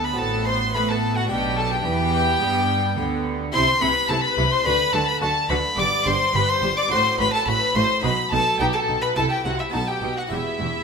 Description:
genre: classical, baroque-style concerto movement with solo episodes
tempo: 107 BPM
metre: 4/4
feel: straight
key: G major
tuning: A4 = 440 Hz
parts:
  - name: rich chamber violin section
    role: melody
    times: 0.0-10.8 s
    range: E5 to D6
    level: -26 LUFS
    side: left 3 dB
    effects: none
  - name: rich violin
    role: melody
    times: 0.0-10.8 s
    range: E5 to D6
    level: -24 LUFS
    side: left 1 dB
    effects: none
  - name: warm chamber violin section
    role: second line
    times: 0.0-10.8 s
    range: E4 to D5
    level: -26 LUFS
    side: left 3 dB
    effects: none
  - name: dark chamber viola section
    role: accompaniment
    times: 0.0-10.7 s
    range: B3 to G4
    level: -31 LUFS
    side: right 2 dB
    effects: none
  - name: harpsichord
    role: accompaniment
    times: 0.0-10.8 s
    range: D2 to G4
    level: -32 LUFS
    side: right 1 dB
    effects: none
  - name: rich chamber double bass section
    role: bass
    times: 0.0-10.7 s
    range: E1 to A2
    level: -28 LUFS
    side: right 3 dB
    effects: none
  - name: warm studio cello section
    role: bass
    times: 0.0-10.7 s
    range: D2 to A3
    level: -29 LUFS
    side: right 4 dB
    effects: none
room: moderate recital hall reverb, RT60 1.4 s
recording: minimal, uncompressed stereo recording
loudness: -19 LUFS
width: side -5 dB against mid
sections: 0.0-10.8 A section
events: none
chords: 0.2 F#dim/A; 1.3 G/B; 3.5 C; 4.7 D; 5.8 G; 6.9 F#dim/A; 8.0 B; 9.2 C; 9.7 B; 10.3 Em

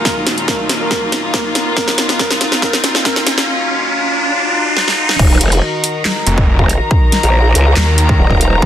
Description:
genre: heavy wobble dubstep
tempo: 140 BPM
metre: 4/4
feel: half-time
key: Eb minor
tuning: A4 = 440 Hz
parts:
  - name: dark baby grand piano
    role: melody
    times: 0.0-3.5 s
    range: Eb4 to Bb4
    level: -21 LUFS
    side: right 1 dB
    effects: digital delay
  - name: warm studio string section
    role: sustained chords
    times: 0.0-8.7 s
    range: Eb2 to Bb5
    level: -19 LUFS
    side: left 2 dB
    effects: sidechain pumping
  - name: riser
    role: sound effects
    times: 0.0-5.2 s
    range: none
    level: -19 LUFS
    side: equal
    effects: none
  - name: dubstep drum kit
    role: drums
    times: 0.1-8.5 s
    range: crash cymbal, handclaps, hi-hat, snare drum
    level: -16 LUFS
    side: equal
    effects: soft clipping on snare
  - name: electronic kick drum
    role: drums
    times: 0.1-8.7 s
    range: none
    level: -14 LUFS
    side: equal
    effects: none
  - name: growl bass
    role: bass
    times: 5.2-8.7 s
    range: Eb1 to Db2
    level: -12 LUFS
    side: equal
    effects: chorus, overdrive
  - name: snarling distorted saw bass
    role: bass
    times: 6.3-8.2 s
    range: F1 to Eb2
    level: -13 LUFS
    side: equal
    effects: distortion, overdrive
room: light reverb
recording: dense, heavily limited modern master, high-pass filter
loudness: -11 LUFS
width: side -11 dB against mid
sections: 0.0-5.2 A section; 5.2-8.7 B section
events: build-up 0.0-5.2; drum fill 0.0-3.5, 4.8-5.2; riser 0.0-5.2; drop 5.2-8.7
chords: 0.0 Ebm

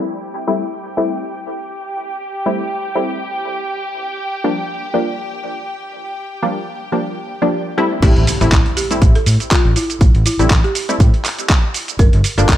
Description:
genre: deep house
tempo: 121 BPM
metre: 4/4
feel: swing 55% on 16ths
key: A phrygian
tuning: A4 = 440 Hz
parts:
  - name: filtered dub chord stab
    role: stabs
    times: 0.0-12.5 s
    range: F3 to E4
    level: -20 LUFS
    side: left 1 dB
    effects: chorus, tape echo
  - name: warm chamber violin section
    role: texture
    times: 0.1-8.0 s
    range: G4 to G5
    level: -25 LUFS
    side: equal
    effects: none
  - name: folk marimba with medium hard mallets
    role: melody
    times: 8.0-12.6 s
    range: E4 to Bb4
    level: -23 LUFS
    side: right 1 dB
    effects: dub echo
  - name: overdriven fingered electric bass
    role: bass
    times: 8.0-12.6 s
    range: G1 to A2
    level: -15 LUFS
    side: equal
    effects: sidechain pumping
  - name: dusty soul sampler-style drum kit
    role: drums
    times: 8.0-12.6 s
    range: cabasa, crash cymbal, handclaps, hi-hat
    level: -20 LUFS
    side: right 1 dB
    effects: studio reverb
  - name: electronic kick drum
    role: drums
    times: 8.0-12.6 s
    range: none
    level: -12 LUFS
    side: equal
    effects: studio reverb
  - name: impact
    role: sound effects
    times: 8.0-10.0 s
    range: none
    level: -24 LUFS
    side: equal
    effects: none
room: light reverb, digital ambience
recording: low-pass filter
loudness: -14 LUFS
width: side -12 dB against mid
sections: 0.0-8.0 A section; 8.0-12.6 B section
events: filter sweep on synth stab 0.0-8.0; filter sweep 0.0-8.0; drop 8.0-12.6; impact 8.0-10.0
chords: 0.1 Am7; 4.1 Gm7; 8.0 Am7; 12.0 Gm7

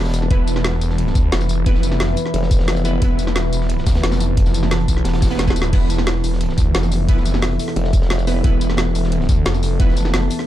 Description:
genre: dark technical drum and bass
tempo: 177 BPM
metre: 4/4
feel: straight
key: unclear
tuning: A4 = 441 Hz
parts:
  - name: deep dark ambient pad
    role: sustained chords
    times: 0.0-10.5 s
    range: E3 to A5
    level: -23 LUFS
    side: equal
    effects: chorus, built-in reverb, sidechain pumping
  - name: formant-sweep wobble bass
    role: bass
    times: 0.0-0.3, 2.3-3.0, 7.8-8.4 s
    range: E1 to F1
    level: -19 LUFS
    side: equal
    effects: chorus
  - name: crunchy breakbeat drum kit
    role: drums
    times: 0.0-10.4 s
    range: hi-hat, snare drum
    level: -31 LUFS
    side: equal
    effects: high-pass filter on hats, high-pass filter on snare, high-pass filter on room
  - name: drum and bass drum kit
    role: drums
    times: 0.1-10.5 s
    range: crash cymbal, hi-hat, snare drum, tambourine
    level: -24 LUFS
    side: equal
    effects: none
  - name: orchestra-hit-like synth stab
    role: stabs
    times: 0.3-9.9 s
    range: B3 to B4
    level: -28 LUFS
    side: right 3 dB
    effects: built-in reverb, dub echo
  - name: snarling distorted saw bass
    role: bass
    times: 0.3-10.3 s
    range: E1 to D2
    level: -19 LUFS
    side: equal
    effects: distortion, tube saturation
  - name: electronic kick drum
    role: drums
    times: 0.3-9.9 s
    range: none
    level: -16 LUFS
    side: equal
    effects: none
room: digital ambience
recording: dark, warm production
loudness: -15 LUFS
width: side -13 dB against mid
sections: 0.0-10.5 A section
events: drum fill 5.4-5.7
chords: 0.0 E5

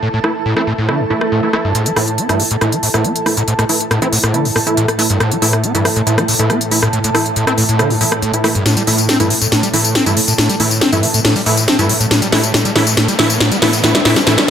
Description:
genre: driving peak-time techno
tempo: 139 BPM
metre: 4/4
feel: straight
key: unclear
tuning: A4 = 441 Hz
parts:
  - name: screaming distorted acid line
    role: riff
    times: 0.0-14.4 s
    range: G2 to C4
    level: -17 LUFS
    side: equal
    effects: distortion, analog chorus, dub echo
  - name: granular cloud pad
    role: texture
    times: 0.0-14.5 s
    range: E4 to A5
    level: -23 LUFS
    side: right 2 dB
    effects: built-in reverb
  - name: rave stab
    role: stabs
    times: 0.2-14.3 s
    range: E3 to E4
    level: -19 LUFS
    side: right 1 dB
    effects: chorus, built-in reverb, dub echo
  - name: techno drum kit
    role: drums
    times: 0.2-14.5 s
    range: hi-hat, rim click, snare drum, tambourine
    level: -15 LUFS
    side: left 1 dB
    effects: overdrive
  - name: swell and riser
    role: sound effects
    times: 1.0-1.8, 10.8-14.5 s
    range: none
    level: -23 LUFS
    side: equal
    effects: none
  - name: swarming drone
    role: drone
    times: 3.3-14.5 s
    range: A2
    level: -24 LUFS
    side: right 1 dB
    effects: built-in reverb
room: moderate plate reverb, RT60 1.2 s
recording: none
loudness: -12 LUFS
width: side -8 dB against mid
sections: 0.0-1.8 A section; 1.8-14.5 B section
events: swell 1.0-1.8; build-up 1.8-14.5; filter sweep on synth stab 1.8-14.5; drum fill 8.7-14.5; riser 10.8-14.5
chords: 0.0 A5

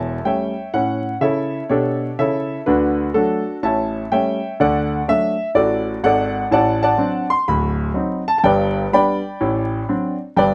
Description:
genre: jazz, stride piano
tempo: 125 BPM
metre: 4/4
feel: swing 66% on 8ths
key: D major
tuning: A4 = 440 Hz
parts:
  - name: clear concert grand piano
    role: solo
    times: 0.0-10.5 s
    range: D1 to C6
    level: -19 LUFS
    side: equal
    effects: none
room: moderate small room reverb, RT60 0.5 s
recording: rough home demo mix, vinyl crackle, nothing above 10.6 kHz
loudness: -19 LUFS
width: mono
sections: 0.0-10.5 A section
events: none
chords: 0.0 A7/E; 0.7 A7; 2.7 D; 3.6 A7; 4.6 D; 6.5 D7/A; 7.5 D7b9; 8.4 G; 9.4 D7/A

